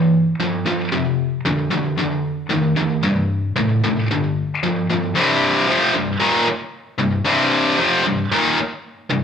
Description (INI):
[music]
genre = rock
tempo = 114 BPM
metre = 4/4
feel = straight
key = unclear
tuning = A4 = 440 Hz
[part]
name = tight distorted guitar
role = solo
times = 0.0-9.2 s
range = C2 to F3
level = -16 LUFS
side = left 1 dB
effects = distortion, slapback echo
[sound]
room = wet echo chamber reverb, RT60 1.4 s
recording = none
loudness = -16 LUFS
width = side -7 dB against mid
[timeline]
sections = 0.0-5.1 A section; 5.1-9.2 B section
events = none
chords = 0.0 G5; 0.9 F5; 3.0 C5; 4.1 G5; 5.1 C5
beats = 0.40 | 0.92 1.45 1.98 2.51 | 3.04 3.56 4.09 4.62 | 5.15 5.68 6.21 6.73 | 7.26 7.79 8.32 8.85